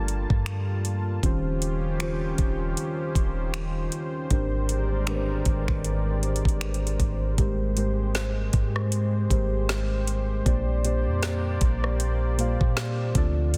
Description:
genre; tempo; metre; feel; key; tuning
contemporary R&B; 78 BPM; 4/4; swing 58% on 16ths; unclear; A4 = 440 Hz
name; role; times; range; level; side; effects
muted felt-like synth keys; accompaniment; 0.0-13.6 s; Ab2 to F5; -32 LUFS; equal; chorus
warm analog pad; sustained chords; 0.0-13.6 s; D3 to A5; -36 LUFS; equal; chorus
soft 808-style bass; bass; 0.0-13.6 s; Eb1 to D3; -30 LUFS; equal; none
smooth R&B drum kit; drums; 0.1-13.6 s; finger snaps, hi-hat, kick drum, rim click, snare drum; -29 LUFS; equal; soft clipping on snare
room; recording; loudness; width
little or no reverb; dense, heavily limited modern master; -26 LUFS; mono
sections
0.0-7.4 A section; 7.4-13.6 B section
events
none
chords
0.0 Gm9; 1.2 Eb13; 4.3 Abmaj9#11; 7.4 Abmaj7; 10.5 Bb69

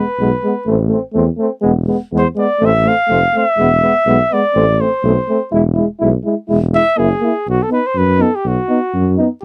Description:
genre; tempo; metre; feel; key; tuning
balkan folk, Balkan brass band; 124 BPM; 2/4; straight; E phrygian dominant; A4 = 440 Hz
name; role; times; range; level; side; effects
mellow cornet; melody; 0.0-9.2 s; F#4 to F5; -18 LUFS; equal; none
clear euphonium; accompaniment; 0.0-9.3 s; B3 to E4; -22 LUFS; equal; none
mellow euphonium; accompaniment; 0.0-9.3 s; G#3 to B3; -20 LUFS; equal; none
mellow tuba; bass; 0.2-9.2 s; E1 to F#2; -19 LUFS; equal; none
room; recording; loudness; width
light reverb; dry, close 1970s-style studio recording; -15 LUFS; mono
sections
0.0-7.5 A section; 7.5-9.4 B section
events
cornet solo 0.0-7.5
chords
0.0 E (rootless); 0.7 Am; 1.6 E; 2.6 Am; 3.6 E; 4.6 Am; 5.5 E; 7.0 F#7; 7.5 B

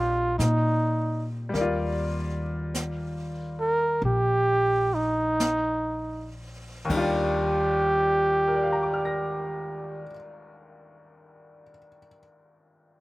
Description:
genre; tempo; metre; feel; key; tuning
jazz ballad; 38-54 BPM; 4/4; swing 66% on 8ths; Eb major; A4 = 441 Hz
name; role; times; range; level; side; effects
breathy trumpet; melody; 0.0-10.0 s; Eb4 to Bb4; -24 LUFS; right 1 dB; none
bright upright piano; accompaniment; 0.0-13.0 s; Eb2 to Bb6; -31 LUFS; left 2 dB; none
upright bass; bass; 0.0-10.0 s; Bb1 to Bb2; -30 LUFS; left 1 dB; none
jazz brush drum kit; drums; 0.4-7.6 s; brushed snare drum, hi-hat, kick drum, ride cymbal, snare drum; -36 LUFS; equal; none
room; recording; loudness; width
little or no reverb; recorded outdoors, with no room sound; -23 LUFS; side -20 dB against mid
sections
0.0-6.9 A section; 6.9-13.0 B section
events
slowing down 0.0-6.9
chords
0.0 Ebmaj7

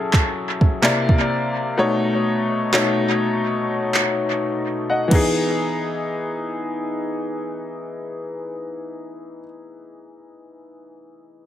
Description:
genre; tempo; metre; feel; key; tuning
contemporary R&B; 63 BPM; 4/4; swing 54% on 16ths; E major; A4 = 440 Hz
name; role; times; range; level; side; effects
clear grand piano; accompaniment; 0.0-11.5 s; B2 to F#5; -21 LUFS; left 2 dB; tape echo
smooth R&B drum kit; drums; 0.1-5.4 s; crash cymbal, handclaps, kick drum; -20 LUFS; right 1 dB; overdrive, tape echo
room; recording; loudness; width
moderate spring reverb, RT60 2.5 s; echo-heavy mix; -19 LUFS; side -11 dB against mid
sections
0.0-5.6 A section; 5.6-9.4 B section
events
drum fill 4.6-5.6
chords
0.0 F#m7; 0.8 C9; 1.8 B9; 5.1 Emaj7

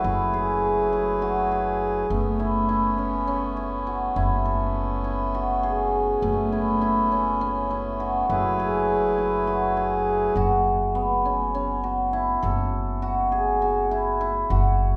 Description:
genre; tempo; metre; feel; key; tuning
contemporary instrumental, chamber music in an uneven meter; 203 BPM (eighths); 7/8; straight; F# minor; A4 = 442 Hz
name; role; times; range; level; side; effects
hand-pumped harmonium; sustained chords; 0.0-10.3 s; F#3 to B4; -32 LUFS; equal; none
cimbalom; arpeggios; 0.0-15.0 s; A3 to A4; -25 LUFS; equal; none
upright bass; bass; 0.0-15.0 s; F#1; -31 LUFS; equal; none
room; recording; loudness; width
wet scoring stage reverb, RT60 1.7 s; heard from further back in the room; -24 LUFS; mono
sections
0.0-10.4 A section; 10.4-15.0 B section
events
none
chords
0.0 F#m11

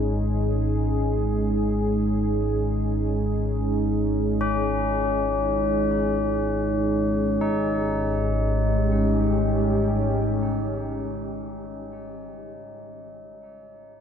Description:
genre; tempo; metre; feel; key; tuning
dark ambient drone; free time; none; none; unclear; A4 = 442 Hz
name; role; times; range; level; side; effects
deep dark ambient pad; sustained chords; 0.0-12.2 s; G#3 to G#4; -25 LUFS; equal; chorus, built-in reverb
tubular bells; arpeggios; 0.0-13.9 s; C#4 to D#4; -28 LUFS; left 4 dB; ping-pong delay
deep rumbling drone; drone; 0.0-12.0 s; G#1 to G#2; -27 LUFS; equal; built-in reverb, lush chorus
room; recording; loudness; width
wet cathedral reverb, RT60 6.2 s; cassette tape; -21 LUFS; side -8 dB against mid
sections
0.0-7.4 A section; 7.4-11.4 B section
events
none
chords
0.0 G#5

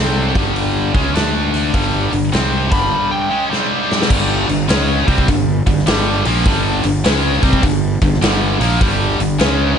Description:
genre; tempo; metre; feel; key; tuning
blues rock power trio and southern rock; 102 BPM; 4/4; swing 65% on 8ths; unclear; A4 = 441 Hz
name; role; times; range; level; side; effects
overdriven slide guitar; melody; 0.0-3.4 s; A4 to B5; -20 LUFS; left 1 dB; slapback echo, plate reverb
tight distorted guitar; riff; 0.0-9.8 s; G2 to D4; -17 LUFS; equal; distortion
fuzz fingered electric bass; bass; 0.0-9.8 s; G1 to D2; -19 LUFS; equal; overdrive
big rock drum kit; drums; 0.4-9.6 s; crash cymbal, hi-hat, kick drum, snare drum; -18 LUFS; equal; none
room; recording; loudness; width
light reverb; nothing above 10.3 kHz; -13 LUFS; side -7 dB against mid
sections
0.0-4.1 A section; 4.1-9.8 B section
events
drum fill 3.5-4.1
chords
0.0 G5; 1.1 D5; 1.7 G5; 3.5 C5; 4.1 G5

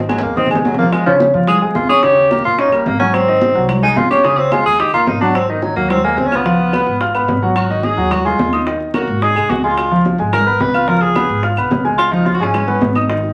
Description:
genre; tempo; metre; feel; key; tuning
Afro-Cuban jazz; 217 BPM; 4/4; straight; unclear; A4 = 440 Hz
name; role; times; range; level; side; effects
warm tenor saxophone; second line; 0.0-12.9 s; Eb3 to Cb5; -19 LUFS; equal; none
warm grand piano; accompaniment; 0.0-13.3 s; Db3 to F6; -18 LUFS; equal; none
upright bass; bass; 0.0-13.3 s; Ab1 to Bb2; -26 LUFS; equal; none
bongos; percussion; 0.0-13.3 s; none; -26 LUFS; equal; none
claves; percussion; 0.1-13.1 s; none; -33 LUFS; equal; none
congas; percussion; 0.1-13.3 s; none; -25 LUFS; equal; none
room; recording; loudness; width
wet club reverb, RT60 0.6 s; vinyl crackle; -15 LUFS; mono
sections
0.0-5.4 A section; 5.4-13.3 A section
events
drum fill 0.0-0.9; tenor saxophone solo 0.0-13.3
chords
0.0 Ab69; 0.9 Bbm7; 2.0 Eb7; 3.1 Ab9; 4.2 Bbm7; 4.8 Eb5; 5.4 Ab5; 6.5 Db7; 7.6 Ab5; 8.7 Ebm; 9.2 Ab; 9.8 Db7

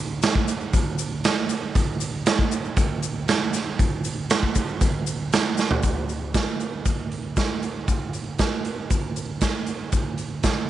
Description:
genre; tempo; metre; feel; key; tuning
rock; 117 BPM; 4/4; straight; none; none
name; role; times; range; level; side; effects
raw garage drum kit; drums; 0.2-10.6 s; hi-hat, kick drum, snare drum, toms; -22 LUFS; right 1 dB; none
tube shaker; percussion; 0.2-10.6 s; none; -35 LUFS; left 18 dB; none
room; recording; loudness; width
light reverb, small room ambience; 1960s-style stereo, nothing above 10.6 kHz; -22 LUFS; side -12 dB against mid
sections
0.0-5.8 A section; 5.8-10.7 B section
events
drum fill 5.6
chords
none

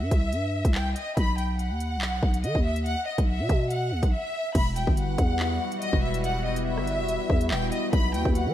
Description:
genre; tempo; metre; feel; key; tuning
hip hop, drill; 142 BPM; 4/4; half-time; E harmonic minor; A4 = 439 Hz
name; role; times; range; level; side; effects
clear symphonic violin section; melody; 0.0-8.5 s; D#5 to B5; -30 LUFS; left 1 dB; ping-pong delay
growling 808-style bass; bass; 0.0-8.5 s; D#1 to F#3; -27 LUFS; equal; none
drill drum kit; drums; 0.1-8.5 s; crash cymbal, handclaps, hi-hat, kick drum, rim click; -26 LUFS; equal; none
sweeping resonant pad; sustained chords; 4.5-8.5 s; F#3 to F#4; -31 LUFS; left 2 dB; chorus
room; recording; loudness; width
light reverb; none; -23 LUFS; side -12 dB against mid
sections
0.0-4.5 A section; 4.5-8.5 B section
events
break 4.1-4.5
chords
0.0 C; 1.2 Bsus4; 4.5 Emadd9; 7.9 Bsus4

